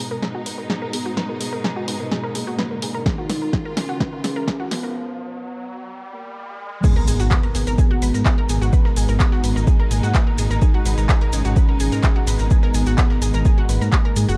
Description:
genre	melodic techno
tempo	127 BPM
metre	4/4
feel	straight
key	G# dorian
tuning	A4 = 440 Hz
part	soft octave-layered synth lead	melody	0.0-14.4 s	A#3 to D#4	-31 LUFS	equal	chorus, phaser, vintage 12-bit sampler grit, delay
part	clear symphonic string section	sustained chords	0.0-14.4 s	G#2 to E#4	-34 LUFS	equal	sidechain pumping
part	analog pluck	arpeggios	0.0-14.3 s	F#4 to B5	-32 LUFS	equal	chorus, cassette tape, sidechain pumping, digital delay
part	riser and impact	sound effects	2.7-8.7 s	none	-34 LUFS	equal	none
part	punchy analog drum machine	drums	0.2-14.3 s	crash cymbal, handclaps, hi-hat, snare drum	-29 LUFS	equal	sidechain pumping on hats, sidechain pumping on cymbals
part	electronic kick drum	drums	3.1-14.0 s	none	-20 LUFS	equal	none
part	analog drone	drone	8.8-14.4 s	G#2 to G#3	-36 LUFS	equal	none
part	dusty soul sampler-style drum kit	drums	6.8-14.3 s	hi-hat, shaker, snare drum	-41 LUFS	equal	none
part	maracas	percussion	6.8-14.4 s	none	-36 LUFS	equal	none
part	swelling detuned saw bass	bass	7.1-14.4 s	F#1 to G#2	-22 LUFS	equal	sidechain pumping
room	light reverb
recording	dark, warm production, high-pass filter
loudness	-20 LUFS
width	mono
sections	0.0-6.8 A section; 6.8-14.4 B section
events	build-up 0.0-6.8; drum fill 0.0-5.0; filter sweep on synth arpeggio sound 0.0-6.8; filter sweep on soft synth lead 0.0-6.8; filter sweep 0.0-6.8; riser 2.7-6.8; break 5.0-6.8; drop 6.8-14.4; impact 6.8-8.7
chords	0.0 G#m

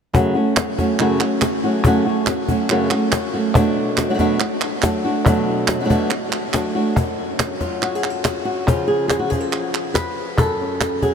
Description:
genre	flamenco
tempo	141 BPM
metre	4/4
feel	straight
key	F# minor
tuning	A4 = 440 Hz
part	flamenco guitar	melody	0.1-11.1 s	F#2 to B4	-18 LUFS	equal	ping-pong delay
part	cajon	percussion	0.1-11.1 s	none	-22 LUFS	left 2 dB	none
part	palmas hand claps	percussion	0.1-11.0 s	none	-26 LUFS	right 6 dB	none
room	wet huge ambient reverb, RT60 7.7 s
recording	dreamy mix soaked in reverb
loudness	-17 LUFS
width	side -7 dB against mid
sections	0.1-7.0 A section; 7.0-11.1 B section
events	none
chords	0.1 F#m; 3.5 Bm7; 7.0 N.C.; 8.7 C#; 10.4 F#m

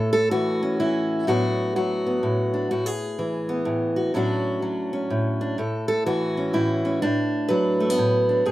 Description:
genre	folk, solo fingerstyle acoustic guitar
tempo	125 BPM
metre	3/4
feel	swing 63% on 8ths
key	A major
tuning	A4 = 440 Hz
part	fingerpicked steel-string acoustic guitar	solo	0.0-8.5 s	A2 to B4	-21 LUFS	equal	none
room	light reverb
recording	recorded outdoors, with no room sound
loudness	-21 LUFS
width	side -15 dB against mid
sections	0.0-8.5 A section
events	none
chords	0.0 A; 1.3 Bm/A; 2.7 Eadd9/A; 4.1 Dmaj7/A; 5.6 A; 7.0 Bm/A

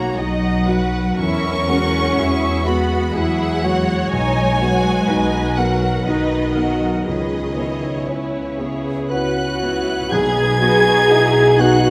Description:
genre	cinematic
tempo	61 BPM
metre	3/4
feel	rubato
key	B major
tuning	A4 = 439 Hz
part	rich studio violin section	melody	0.0-11.9 s	C#5 to G#6	-28 LUFS	equal	none
part	rich symphonic violin section	second line	0.0-11.9 s	C#4 to F#5	-29 LUFS	equal	none
part	dark baby grand piano	accompaniment	0.0-11.9 s	B1 to D#5	-25 LUFS	equal	none
part	rich studio viola section	accompaniment	0.0-11.9 s	E4 to D#5	-28 LUFS	equal	none
part	concert harp	arpeggios	0.0-11.9 s	B2 to E5	-29 LUFS	equal	none
part	warm studio cello section	bass	0.0-11.9 s	C#3 to G#4	-26 LUFS	equal	none
part	warm studio double bass section	bass	0.0-11.9 s	B1 to E2	-27 LUFS	equal	none
part	dark clarinet	second line	9.1-11.9 s	F#4 to G#4	-26 LUFS	equal	none
part	hollow concert flute	second line	9.1-11.9 s	F#5 to G#5	-27 LUFS	equal	none
part	mellow oboe	second line	9.1-11.9 s	F#5 to G#5	-25 LUFS	equal	none
part	dark French horn section	sustained chords	9.1-11.9 s	F#4 to G#4	-21 LUFS	equal	none
part	timpani	percussion	10.1-11.6 s	B2	-32 LUFS	equal	none
room	wet scoring stage reverb, RT60 1.4 s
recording	none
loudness	-18 LUFS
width	mono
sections	0.0-10.1 A section; 10.1-11.9 A section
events	none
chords	0.0 B; 1.2 Eadd9; 4.1 B; 7.1 C#m7; 10.1 B

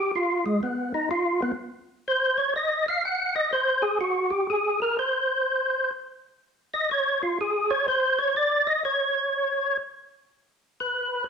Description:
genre	jazz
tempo	124 BPM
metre	4/4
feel	swing 66% on 8ths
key	unclear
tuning	A4 = 440 Hz
part	percussive tonewheel organ	solo	0.0-11.2 s	Ab3 to Gb5	-22 LUFS	equal	slow rotary speaker, overdrive, chorus vibrato
room	wet stone room reverb, RT60 1.0 s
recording	band playing live in one room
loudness	-22 LUFS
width	side -6 dB against mid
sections	0.0-11.3 A section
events	tonewheel organ solo 0.0-11.3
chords	none

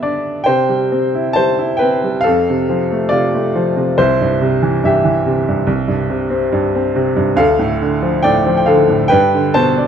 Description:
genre	classical, lyrical solo piano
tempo	69 BPM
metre	4/4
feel	rubato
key	C major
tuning	A4 = 440 Hz
part	clear upright piano	solo	0.0-9.9 s	C2 to A5	-12 LUFS	equal	none
room	light reverb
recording	dark, warm production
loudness	-12 LUFS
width	side -8 dB against mid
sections	0.5-9.9 A section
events	upright piano fill 0.0-0.5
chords	0.5 C; 2.2 F; 4.0 C; 7.4 Dm; 9.1 G

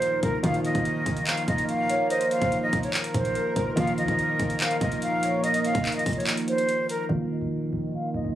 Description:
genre	hip hop, trap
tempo	144 BPM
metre	4/4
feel	half-time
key	unclear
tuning	A4 = 440 Hz
part	breathy concert flute	melody	0.0-8.3 s	Bb4 to F5	-27 LUFS	equal	low-pass filter, digital delay
part	felt-muted upright piano	accompaniment	0.0-8.4 s	Eb3 to F4	-31 LUFS	right 1 dB	low-pass filter
part	warm analog pad	sustained chords	0.0-8.4 s	F3 to Bb4	-31 LUFS	right 1 dB	chorus, low-pass filter
part	warm 808-style bass	bass	0.0-8.4 s	Eb1 to Eb2	-36 LUFS	equal	none
part	trap drum kit	drums	0.0-7.0 s	handclaps, hi-hat, kick drum	-29 LUFS	equal	none
part	mellow brass ensemble	stabs	0.4-0.8, 3.8-4.2 s	Bb2 to F3	-37 LUFS	right 2 dB	digital delay
part	warm velvety synth lead	second line	0.6-5.8 s	Bb4 to Eb5	-31 LUFS	right 1 dB	chorus, digital delay
room	small room ambience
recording	recorded on a phone in the room, club reverb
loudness	-23 LUFS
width	side -12 dB against mid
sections	0.0-7.1 A section; 7.1-8.4 B section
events	kick muted 6.3-7.1; filter sweep 7.1-8.4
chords	0.0 Ebsus2

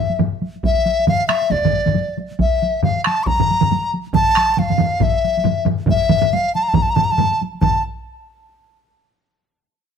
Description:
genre	japanese traditional, taiko drum ensemble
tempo	138 BPM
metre	4/4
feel	swing 60% on 16ths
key	unclear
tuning	A4 = 440 Hz
part	bright large dizi	melody	0.0-7.8 s	D5 to D6	-18 LUFS	left 2 dB	plate reverb
part	taiko ensemble	percussion	0.1-7.8 s	none	-25 LUFS	right 1 dB	none
part	solo taiko drums	percussion	0.2-8.0 s	none	-22 LUFS	left 7 dB	none
part	taiko ensemble	percussion	0.2-8.0 s	none	-20 LUFS	right 6 dB	none
part	taiko ensemble	percussion	0.6-7.8 s	none	-24 LUFS	right 1 dB	none
room	moderate studio reverb, RT60 0.6 s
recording	none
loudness	-15 LUFS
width	side -7 dB against mid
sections	0.0-7.6 A section; 7.6-9.4 B section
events	none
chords	none

